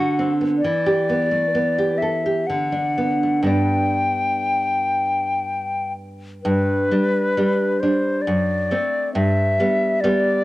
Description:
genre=romantic duo for flute and classical guitar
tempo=58-68 BPM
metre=3/4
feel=rubato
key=G major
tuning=A4 = 440 Hz
part: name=hollow concert flute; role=melody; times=0.0-10.4 s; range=B4 to G5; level=-21 LUFS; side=left 2 dB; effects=cassette tape
part: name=nylon-string guitar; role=accompaniment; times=0.0-10.4 s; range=F#2 to A4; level=-21 LUFS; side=right 1 dB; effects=cassette tape
room=moderate spring reverb, RT60 1.7 s, small room ambience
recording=home recording on cassette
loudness=-18 LUFS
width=side -17 dB against mid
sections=0.0-6.4 A section; 6.4-10.4 A section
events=none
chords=0.0 D7; 0.6 Em; 2.5 D6; 3.5 G; 8.3 D7/F#; 9.1 G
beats=| 0.62 1.52 2.47 | 3.48 4.50 5.49 | 6.45 7.36 8.26 | 9.15 10.05

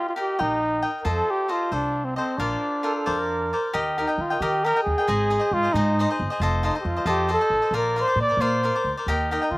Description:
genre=mexican folk, mariachi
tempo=90 BPM (dotted quarters)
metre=6/8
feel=straight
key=Bb major, Eb major from 3.8 s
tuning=A4 = 436 Hz
part: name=dark trumpet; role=melody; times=0.0-9.6 s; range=C4 to D5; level=-24 LUFS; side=equal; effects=slapback echo
part: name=cavaquinho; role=accompaniment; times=0.0-9.6 s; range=Eb4 to G5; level=-26 LUFS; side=left 1 dB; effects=none
part: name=upright bass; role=bass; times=0.4-9.6 s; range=F1 to Eb3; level=-27 LUFS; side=equal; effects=none
part: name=mellow trumpet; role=second line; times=2.8-3.8 s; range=A4 to Bb4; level=-27 LUFS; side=right 3 dB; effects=none
room=little or no reverb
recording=recorded outdoors, with no room sound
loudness=-21 LUFS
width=side -21 dB against mid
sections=0.0-3.8 A section; 3.8-9.6 B section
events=none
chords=0.0 Eb; 1.1 F7; 2.4 Bbadd9; 3.8 Eb; 5.1 Ab; 6.4 F7; 7.7 Bbadd9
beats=0.39 | 1.05 1.72 | 2.39 3.07 | 3.75 4.42 | 5.09 5.75 | 6.41 7.07 | 7.74 8.41 | 9.08

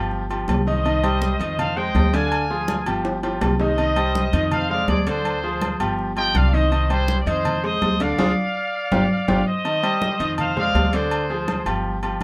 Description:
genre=latin, salsa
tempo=164 BPM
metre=4/4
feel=straight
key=C minor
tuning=A4 = 440 Hz
part: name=bright grand piano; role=accompaniment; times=0.0-12.2 s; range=D3 to Eb5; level=-27 LUFS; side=equal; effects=none
part: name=upright bass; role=bass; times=0.0-12.2 s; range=G1 to F2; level=-27 LUFS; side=equal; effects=none
part: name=congas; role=percussion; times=0.1-12.2 s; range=none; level=-28 LUFS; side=equal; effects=none
part: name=agogo bells and timbales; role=percussion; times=0.3-12.2 s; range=none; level=-31 LUFS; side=equal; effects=none
part: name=bright trumpet section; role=melody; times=0.7-11.7 s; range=Ab4 to Ab5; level=-27 LUFS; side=equal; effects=none
room=moderate small room reverb, RT60 0.6 s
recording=none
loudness=-21 LUFS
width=mono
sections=0.0-9.6 A section; 9.6-12.2 A section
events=drum fill 3.0-3.8, 8.5-9.6; band accent 8.2-9.6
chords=0.1 Cmadd11/G; 0.8 Cm; 1.6 Fm7; 2.3 Ddim; 3.0 Cmadd11/G; 3.8 Cm; 4.5 Fm7; 5.2 Dm7b5; 6.0 G5; 6.7 Cm; 7.4 Fm7; 8.2 Ddim; 8.9 G5; 9.6 Cm; 10.4 Fm7; 11.1 Dm7b5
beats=0.12 0.48 | 0.85 1.22 1.58 1.95 | 2.32 2.68 3.05 3.42 | 3.78 4.15 4.52 4.88 | 5.25 5.62 5.98 6.35 | 6.71 7.08 7.45 7.81 | 8.18 8.55 8.91 9.28 | 9.65 10.01 10.38 10.74 | 11.11 11.48 11.84 12.21

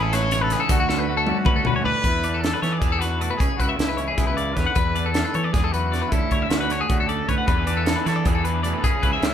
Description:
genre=math rock and midwest emo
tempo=310 BPM (eighths)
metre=7/8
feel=straight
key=unclear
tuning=A4 = 440 Hz
part: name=clear trumpet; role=melody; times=0.0-9.3 s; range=E4 to C#5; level=-27 LUFS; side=left 2 dB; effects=none
part: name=twelve-string electric guitar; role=accompaniment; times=0.0-9.3 s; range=D2 to E4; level=-30 LUFS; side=right 9 dB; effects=vibrato effect
part: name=twelve-string electric guitar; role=arpeggios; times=0.0-9.3 s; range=F#4 to F#5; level=-26 LUFS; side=left 6 dB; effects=none
part: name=fuzz fingered electric bass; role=bass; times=0.0-9.3 s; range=A1 to E3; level=-26 LUFS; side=equal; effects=overdrive
part: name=crisp fusion drum kit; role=drums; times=0.1-9.3 s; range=hi-hat, kick drum, snare drum, toms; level=-24 LUFS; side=equal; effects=none
part: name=raw garage guitar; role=riff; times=7.5-9.3 s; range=C#3 to G#4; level=-31 LUFS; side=right 2 dB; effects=overdrive
room=light reverb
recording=band playing live in one room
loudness=-19 LUFS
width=side -9 dB against mid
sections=0.0-2.0 A section; 2.0-9.3 B section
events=drum fill 0.9-2.0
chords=0.0 Amaj7; 0.7 Dmaj7; 2.0 E7sus4; 3.4 C#m7; 4.8 E7sus4; 6.1 Dmaj9; 7.5 E7sus4; 8.8 C#m7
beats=0.12 0.31 0.51 | 0.70 0.89 1.08 1.28 1.47 1.66 1.86 | 2.05 2.24 2.44 2.63 2.82 3.02 3.21 | 3.41 3.60 3.79 3.99 4.18 4.38 4.57 | 4.76 4.96 5.15 5.35 5.54 5.74 5.93 | 6.12 6.32 6.51 6.71 6.90 7.09 7.29 | 7.48 7.67 7.87 8.06 8.26 8.45 8.64 | 8.84 9.03 9.22

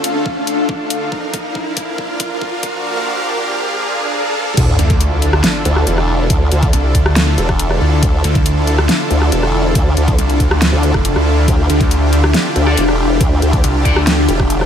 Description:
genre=heavy wobble dubstep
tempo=139 BPM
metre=4/4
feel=half-time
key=D minor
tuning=A4 = 440 Hz
part: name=supersaw chords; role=sustained chords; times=0.0-14.7 s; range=D2 to F5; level=-20 LUFS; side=right 1 dB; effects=sidechain pumping
part: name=dubstep drum kit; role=drums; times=0.0-14.7 s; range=crash cymbal, hi-hat, rim click, snare drum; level=-18 LUFS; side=equal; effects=overdrive
part: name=riser, swell and sub drop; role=sound effects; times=0.0-6.3 s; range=none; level=-22 LUFS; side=right 1 dB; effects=none
part: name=ethereal airy pad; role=texture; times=0.0-14.7 s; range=D4 to F5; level=-21 LUFS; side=left 3 dB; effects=ensemble chorus, built-in reverb, sidechain pumping
part: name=electronic kick drum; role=drums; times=0.3-14.5 s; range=none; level=-16 LUFS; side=equal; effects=overdrive
part: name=formant-sweep wobble bass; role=bass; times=4.6-14.7 s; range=E1 to D2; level=-15 LUFS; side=equal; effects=chorus, overdrive
part: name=snarling distorted saw bass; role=bass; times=4.8-14.3 s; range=F1 to D2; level=-14 LUFS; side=equal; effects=distortion, overdrive
part: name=heavy high-gain guitar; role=stabs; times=12.7-14.0 s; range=D4 to D5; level=-24 LUFS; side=left 2 dB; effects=distortion, dub echo
room=little or no reverb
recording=high-pass filter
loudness=-12 LUFS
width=side -8 dB against mid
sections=0.0-4.6 A section; 4.6-14.7 B section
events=build-up 0.0-4.6; drum fill 0.0-2.8; riser 0.0-4.6; swell 3.7-4.6; drop 4.6-14.7; impact 4.6-6.3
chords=0.0 Dm; 1.1 Bb; 4.6 Dmadd9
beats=0.26 0.69 | 1.12 1.55 1.98 2.42 | 2.85 3.28 3.71 4.14 | 4.57 5.00 5.44 5.87 | 6.30 6.73 7.16 7.59 | 8.03 8.46 8.89 9.32 | 9.75 10.19 10.62 11.05 | 11.48 11.91 12.34 12.78 | 13.21 13.64 14.07 14.50

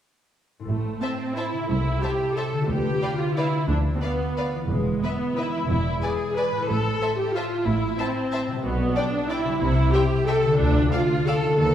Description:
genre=classical, orchestral ballroom waltz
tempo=182 BPM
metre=3/4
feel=uneven beats, rubato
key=A minor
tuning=A4 = 439 Hz
part: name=concert harp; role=arpeggios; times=0.6-11.7 s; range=A2 to D5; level=-28 LUFS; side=left 4 dB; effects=none
part: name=clear studio viola section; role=accompaniment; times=0.7-11.7 s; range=G#3 to B4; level=-24 LUFS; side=right 1 dB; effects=none
part: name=rich symphonic double bass section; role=bass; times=0.7-11.7 s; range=E1 to D#2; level=-28 LUFS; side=right 1 dB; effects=none
part: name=warm symphonic cello section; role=bass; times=0.7-11.7 s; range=C2 to C3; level=-30 LUFS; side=right 2 dB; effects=none
part: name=clear symphonic violin section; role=melody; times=1.0-11.4 s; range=E5 to A5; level=-38 LUFS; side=left 2 dB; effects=none
part: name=bright symphonic violin section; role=second line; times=1.0-11.4 s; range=B4 to F5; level=-34 LUFS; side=left 2 dB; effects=none
room=wet scoring stage reverb, RT60 1.7 s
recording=heard from further back in the room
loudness=-21 LUFS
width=side -10 dB against mid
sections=0.7-11.7 A section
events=none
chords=0.7 Am; 1.7 Am/C; 2.7 Bdim/D; 4.7 E; 5.7 E7; 6.7 Am; 8.6 G/B; 9.6 C; 10.6 Dm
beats=| 0.69 1.02 1.37 | 1.70 2.03 2.37 | 2.70 3.03 3.38 | 3.70 4.03 4.38 | 4.71 5.04 5.38 | 5.70 6.03 6.37 | 6.69 7.01 7.35 | 7.67 7.99 8.33 | 8.65 8.97 9.31 | 9.62 9.94 10.28 | 10.60 10.93 11.27 | 11.59

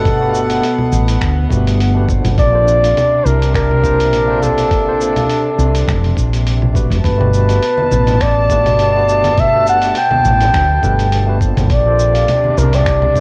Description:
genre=sunset chillout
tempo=103 BPM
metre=4/4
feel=swing 54% on 16ths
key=G major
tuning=A4 = 440 Hz
part: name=breathy flugelhorn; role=melody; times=0.0-13.2 s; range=A4 to G5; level=-17 LUFS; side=equal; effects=cassette tape, tape echo
part: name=tine electric piano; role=accompaniment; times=0.0-13.2 s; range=A3 to A5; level=-27 LUFS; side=equal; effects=cassette tape
part: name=dark chamber string section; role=sustained chords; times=0.0-13.2 s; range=B2 to A5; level=-23 LUFS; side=equal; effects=cassette tape
part: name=woody fretless electric bass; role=bass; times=0.0-13.2 s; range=F1 to D2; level=-18 LUFS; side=equal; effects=transformer saturation, ensemble chorus
part: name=dusty soul sampler-style drum kit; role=drums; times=0.1-13.2 s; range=cabasa, congas, finger snaps, hi-hat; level=-25 LUFS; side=equal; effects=cassette tape
part: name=electronic kick drum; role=drums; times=0.1-13.2 s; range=none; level=-21 LUFS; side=equal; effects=cassette tape
part: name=congas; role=percussion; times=7.8-13.2 s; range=none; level=-28 LUFS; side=equal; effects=none
room=light reverb, digital ambience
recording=home recording on cassette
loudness=-13 LUFS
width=mono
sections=0.0-13.2 A section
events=none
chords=0.0 Gmaj9; 2.4 Bbmaj9; 7.0 Gmaj9; 11.7 Bbmaj9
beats=| 0.05 0.64 1.22 1.80 | 2.38 2.97 3.55 4.13 | 4.71 5.30 5.88 6.46 | 7.04 7.63 8.21 8.79 | 9.37 9.96 10.54 11.12 | 11.71 12.29 12.87

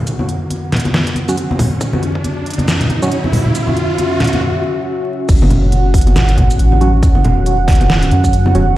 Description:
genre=deep dubstep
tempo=138 BPM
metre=4/4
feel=swing 58% on 16ths, half-time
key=unclear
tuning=A4 = 439 Hz
part: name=dark analog pad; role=sustained chords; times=0.0-8.8 s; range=C#4 to F#5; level=-20 LUFS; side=right 2 dB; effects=chorus
part: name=riser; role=sound effects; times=0.1-4.4 s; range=none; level=-23 LUFS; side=right 2 dB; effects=none
part: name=dubstep drum kit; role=drums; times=0.1-8.7 s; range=crash cymbal, hi-hat, shaker, snare drum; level=-20 LUFS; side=equal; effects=none
part: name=congas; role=percussion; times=0.2-8.5 s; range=none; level=-17 LUFS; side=equal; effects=none
part: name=percussive organ stab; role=stabs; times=1.3-3.1, 6.8-8.7 s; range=F#3 to F#4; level=-22 LUFS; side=right 1 dB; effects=chorus, dub echo
part: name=electronic kick drum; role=drums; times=1.6-2.2, 5.3-8.3 s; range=none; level=-13 LUFS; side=equal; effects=high-pass filter on kick
part: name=soft dub sub bass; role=bass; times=5.3-8.8 s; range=E1 to F#2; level=-13 LUFS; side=equal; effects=tube saturation
room=light reverb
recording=played on a big sound system in a bare room, large studio reverb, vinyl crackle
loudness=-11 LUFS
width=side -15 dB against mid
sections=0.0-5.3 A section; 5.3-8.8 B section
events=build-up 0.0-5.3; filter sweep on synth stab 0.0-5.3; riser 0.1-4.4; break 4.4-5.3; drop 5.3-8.8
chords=0.0 F#5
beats=| 0.07 0.51 0.94 1.38 | 1.81 2.24 2.68 3.11 | 3.55 3.98 4.42 4.85 | 5.29 5.72 6.16 6.59 | 7.03 7.46 7.90 8.33 | 8.77

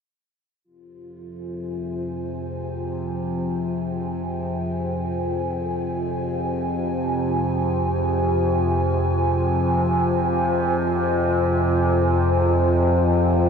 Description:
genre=dark ambient drone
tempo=free time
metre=none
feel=none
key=F minor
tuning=A4 = 440 Hz
part: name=dark analog pad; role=sustained chords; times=1.0-13.5 s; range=F4 to Ab5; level=-24 LUFS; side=equal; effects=chorus
part: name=overtone-sweeping drone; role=drone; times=1.2-13.5 s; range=F2 to C3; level=-22 LUFS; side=equal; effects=chorus, built-in reverb
room=wet huge ambient reverb, RT60 8.3 s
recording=dark, warm production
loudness=-20 LUFS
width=side -6 dB against mid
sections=0.6-13.5 A section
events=none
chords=0.6 Fm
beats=free time

